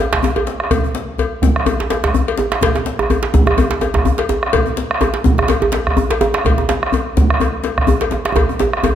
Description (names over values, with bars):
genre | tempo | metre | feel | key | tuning
west african traditional, West African drum ensemble | 126 BPM | 4/4 | swing 55% on 16ths | none | none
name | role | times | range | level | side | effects
bombo | percussion | 0.1-8.8 s | none | -18 LUFS | right 2 dB | none
djembe | percussion | 0.1-8.9 s | none | -19 LUFS | right 3 dB | none
djembe | percussion | 0.2-8.9 s | none | -20 LUFS | left 4 dB | none
cowbell | percussion | 0.4-8.9 s | none | -22 LUFS | left 6 dB | none
room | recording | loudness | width
wet recital hall reverb, RT60 1.5 s | none | -14 LUFS | side -10 dB against mid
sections
0.0-8.9 A section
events
drum fill 8.4-8.9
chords
none